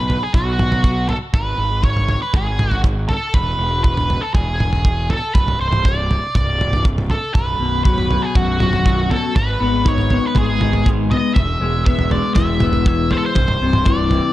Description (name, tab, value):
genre	psychedelic rock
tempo	120 BPM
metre	4/4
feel	straight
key	unclear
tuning	A4 = 440 Hz
part	octave-fuzz lead guitar	melody	0.0-14.3 s	F#4 to E5	-21 LUFS	right 1 dB	wah, distortion, tape echo
part	fuzz picked electric bass	bass	0.0-14.2 s	B0 to B1	-20 LUFS	equal	overdrive
part	cloth-damped thuddy drum kit	drums	0.1-14.2 s	kick drum, toms	-18 LUFS	equal	none
part	electric guitar through a small old amp	riff	7.3-14.3 s	B1 to D#4	-20 LUFS	left 4 dB	harmonic tremolo
room	light reverb, small room ambience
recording	none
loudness	-15 LUFS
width	side -14 dB against mid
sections	0.0-14.3 A section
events	none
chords	0.0 B5; 1.3 G#m; 3.3 E; 5.3 Csus2; 7.4 B5; 9.4 G#m; 11.4 E; 13.4 Cadd9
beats	0.33 0.83 | 1.33 1.83 2.33 2.84 | 3.34 3.84 4.34 4.84 | 5.35 5.85 6.35 6.85 | 7.35 7.86 8.36 8.86 | 9.36 9.86 10.36 10.86 | 11.36 11.86 12.36 12.86 | 13.36 13.86